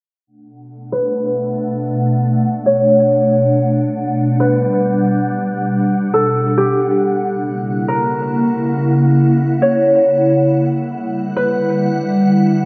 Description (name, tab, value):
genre	hip hop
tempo	free time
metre	none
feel	none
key	B minor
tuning	A4 = 440 Hz
part	glassy FM pad	sustained chords	0.9-12.7 s	B2 to F#5	-18 LUFS	equal	ensemble chorus, built-in reverb, phaser, low-pass filter
part	concert harp	melody	0.9-12.7 s	G4 to C#5	-19 LUFS	equal	low-pass filter, tape echo
room	wet lush hall reverb, RT60 2.3 s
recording	dreamy mix soaked in reverb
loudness	-16 LUFS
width	mono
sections	0.3-12.7 A section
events	filter sweep 0.3-12.7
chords	0.3 Bm7; 3.7 Gmaj7; 7.2 F#7; 10.7 Em9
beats	free time